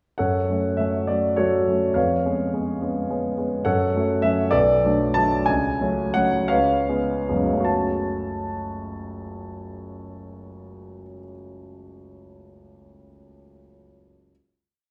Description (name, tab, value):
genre	classical, romantic character piece for solo piano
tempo	49-72 BPM (dotted quarters)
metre	6/8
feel	rubato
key	F# minor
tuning	A4 = 440 Hz
part	warm grand piano	solo	0.2-14.3 s	F#1 to A5	-23 LUFS	equal	none
room	wet recital hall reverb, RT60 1.4 s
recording	heard from further back in the room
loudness	-22 LUFS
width	mono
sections	0.2-7.6 A section; 7.6-12.1 final chord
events	slowing down 2.8-7.6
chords	0.2 F#m; 2.0 C#7/E#; 3.7 F#m; 4.5 Bm7; 5.5 F#m/C#; 6.5 C#7; 7.6 F#m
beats	| 0.20 1.09 | 1.97 2.81 | 3.66 4.53 | 5.47 6.50 | 7.65 8.75 | 9.85 10.97